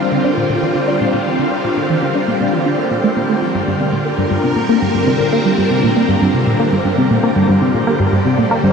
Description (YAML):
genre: ambient, sequencer-driven space music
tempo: 118 BPM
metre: 4/4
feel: straight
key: unclear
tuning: A4 = 438 Hz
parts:
  - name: phased string machine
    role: sustained chords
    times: 0.0-8.7 s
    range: D3 to C5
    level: -16 LUFS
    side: equal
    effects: ensemble chorus, phaser
  - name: tight sequenced synth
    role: riff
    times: 0.0-8.7 s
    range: G2 to D4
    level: -16 LUFS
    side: equal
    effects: chorus, phaser, ping-pong delay
  - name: wind-like tuned noise texture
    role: texture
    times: 0.0-8.7 s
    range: G4 to G5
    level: -27 LUFS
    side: equal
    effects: built-in reverb
room: wet shimmer reverb, RT60 7.4 s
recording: dark, warm production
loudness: -13 LUFS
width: side -6 dB against mid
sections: 0.0-8.7 A section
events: fade-in on synth texture 0.0-8.7; filter sweep on synth arpeggio sound 0.0-8.7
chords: 0.0 Bb; 3.5 Gm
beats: 0.50 1.01 | 1.51 2.02 2.53 3.04 | 3.55 4.06 4.57 5.08 | 5.58 6.09 6.60 7.11 | 7.62 8.12 8.63